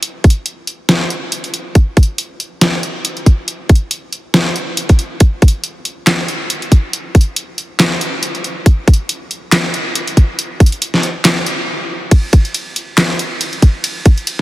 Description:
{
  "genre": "dubstep",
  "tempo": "139 BPM",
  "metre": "4/4",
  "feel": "swing 56% on 16ths, half-time",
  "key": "none",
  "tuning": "none",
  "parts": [
    { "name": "dubstep drum kit", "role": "drums", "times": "0.0-14.4 s", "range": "handclaps, hi-hat, ride cymbal, snare drum", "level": "-15 LUFS", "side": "equal", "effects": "overdrive" },
    { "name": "electronic kick drum", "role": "drums", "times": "0.2-14.2 s", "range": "none", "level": "-7 LUFS", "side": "equal", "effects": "none" }
  ],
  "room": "light reverb",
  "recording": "heavily compressed radio sound",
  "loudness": "-12 LUFS",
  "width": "side -17 dB against mid",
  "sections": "0.0-12.1 A section; 12.1-14.4 B section",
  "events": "build-up 0.0-12.1; stop 11.7-12.1; drop 12.1-14.4",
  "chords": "none"
}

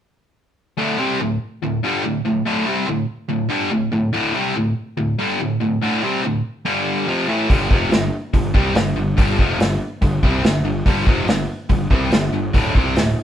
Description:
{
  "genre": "blues rock power trio and southern rock",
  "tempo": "143 BPM",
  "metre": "4/4",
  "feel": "straight",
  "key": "unclear",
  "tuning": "A4 = 440 Hz",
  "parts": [
    { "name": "distorted electric guitar", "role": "riff", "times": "0.8-13.1 s", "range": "D2 to C4", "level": "-19 LUFS", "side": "equal", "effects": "overdrive" },
    { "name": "fuzz picked electric bass", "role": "bass", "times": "7.5-13.1 s", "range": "D1 to C2", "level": "-24 LUFS", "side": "equal", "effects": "overdrive" },
    { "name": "vintage drum kit", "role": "drums", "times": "7.5-13.1 s", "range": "hi-hat, kick drum, snare drum", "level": "-18 LUFS", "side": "equal", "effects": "none" }
  ],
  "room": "moderate studio reverb, RT60 0.8 s",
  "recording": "band playing live in one room",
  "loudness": "-17 LUFS",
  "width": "side -10 dB against mid",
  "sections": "0.8-13.2 A section",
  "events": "none",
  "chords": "0.8 D5; 6.7 G5; 7.1 Fmaj7; 7.5 G5; 12.5 D5"
}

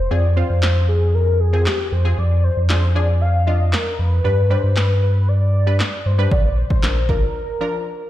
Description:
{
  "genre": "dance-pop",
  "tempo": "116 BPM",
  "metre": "4/4",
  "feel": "straight",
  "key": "unclear",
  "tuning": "A4 = 439 Hz",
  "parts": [
    { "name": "warm velvety synth lead", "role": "melody", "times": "0.0-8.1 s", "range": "G4 to F5", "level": "-24 LUFS", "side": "left 2 dB", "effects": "chorus, dub echo" },
    { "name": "sub bass with octave", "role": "bass", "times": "0.0-7.2 s", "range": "Bb1 to G2", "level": "-16 LUFS", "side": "equal", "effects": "sidechain pumping" },
    { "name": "punchy chord stab", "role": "accompaniment", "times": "0.1-8.1 s", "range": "F3 to B4", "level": "-27 LUFS", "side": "right 1 dB", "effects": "chorus, sidechain pumping" },
    { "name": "punchy analog drum machine", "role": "drums", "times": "0.6-7.2 s", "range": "handclaps, kick drum, snare drum", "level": "-22 LUFS", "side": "equal", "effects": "none" }
  ],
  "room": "little or no reverb",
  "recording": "played on a big sound system in a bare room, stone room reverb",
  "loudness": "-15 LUFS",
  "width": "side -14 dB against mid",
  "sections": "0.0-8.1 A section",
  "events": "break 7.3-8.1",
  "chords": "0.1 Fm; 2.2 Ddim/F; 4.2 G; 6.3 Bb"
}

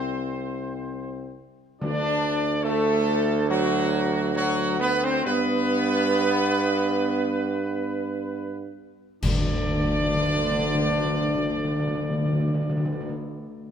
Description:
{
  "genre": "classical, ceremonial fanfare",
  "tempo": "54-74 BPM",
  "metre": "4/4",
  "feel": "straight",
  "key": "unclear",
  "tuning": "A4 = 444 Hz",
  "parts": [
    { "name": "mellow trumpet section", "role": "melody", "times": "0.0-13.1 s", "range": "F#4 to D5", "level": "-28 LUFS", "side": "right 2 dB", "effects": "none" },
    { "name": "dark French horn section", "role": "sustained chords", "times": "0.0-13.1 s", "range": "F#3 to D4", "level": "-30 LUFS", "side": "left 6 dB", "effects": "none" },
    { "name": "mellow trombone section", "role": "sustained chords", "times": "0.0-13.1 s", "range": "D3 to D4", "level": "-32 LUFS", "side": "equal", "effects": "none" },
    { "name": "warm tuba", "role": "bass", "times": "0.0-13.2 s", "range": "C2 to G2", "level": "-27 LUFS", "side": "right 4 dB", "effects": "none" },
    { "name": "timpani", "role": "percussion", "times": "1.8-3.0, 9.2-13.2 s", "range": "D3", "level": "-27 LUFS", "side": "left 1 dB", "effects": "none" },
    { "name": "clash cymbals and concert bass drum", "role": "percussion", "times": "9.2-11.3 s", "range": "none", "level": "-29 LUFS", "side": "left 1 dB", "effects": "none" }
  ],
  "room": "moderate concert hall reverb, RT60 1.9 s",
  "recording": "none",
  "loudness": "-22 LUFS",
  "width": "side -8 dB against mid",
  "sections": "0.0-9.2 A section; 9.2-13.5 B section",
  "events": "slowing down 0.2-9.2; band accent 9.2-10.3",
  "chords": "0.0 N.C.; 1.8 D; 5.3 G; 9.2 N.C."
}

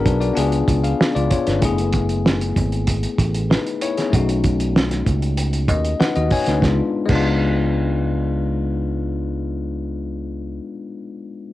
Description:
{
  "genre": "lush 1970s-style soul",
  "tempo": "96 BPM",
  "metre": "4/4",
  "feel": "straight",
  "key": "unclear",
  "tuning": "A4 = 439 Hz",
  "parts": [
    { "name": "bell-like tine electric piano", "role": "accompaniment", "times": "0.0-11.5 s", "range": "G#3 to G#5", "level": "-22 LUFS", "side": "left 5 dB", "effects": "fast stereo tremolo, cassette tape" },
    { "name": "fingered electric bass", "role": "bass", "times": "0.0-10.6 s", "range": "F#1 to D#2", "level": "-21 LUFS", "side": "right 1 dB", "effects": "none" },
    { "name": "cloth-damped thuddy drum kit", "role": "drums", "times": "0.1-7.3 s", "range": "crash cymbal, hi-hat, kick drum, snare drum", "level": "-20 LUFS", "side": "right 1 dB", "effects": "cassette tape" }
  ],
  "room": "light reverb",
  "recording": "home recording on cassette",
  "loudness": "-17 LUFS",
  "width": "side -16 dB against mid",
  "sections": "0.0-6.6 A section; 6.6-9.1 B section",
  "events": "tine electric piano fill 5.4-6.6",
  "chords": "0.4 C#7b9; 1.6 F#m11; 4.1 B9; 6.6 C#7b9"
}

